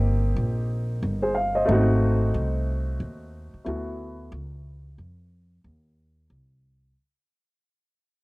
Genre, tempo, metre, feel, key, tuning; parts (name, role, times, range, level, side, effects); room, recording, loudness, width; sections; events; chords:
hip hop, jazz-hop; 91 BPM; 4/4; swing 61% on 16ths; A4 = 442 Hz
dark baby grand piano; accompaniment; 0.0-4.3 s; A3 to F5; -26 LUFS; equal; low-pass filter, cassette tape
upright bass; bass; 0.0-6.9 s; G1 to F2; -26 LUFS; equal
light reverb, small room ambience; home recording on cassette; -22 LUFS; side -23 dB against mid
0.0-7.0 A section
fade-out 0.0-7.0; break 4.3-7.0
0.0 Abmaj9 (rootless); 1.7 Ab7b9; 3.7 D69; 4.3 Dbadd9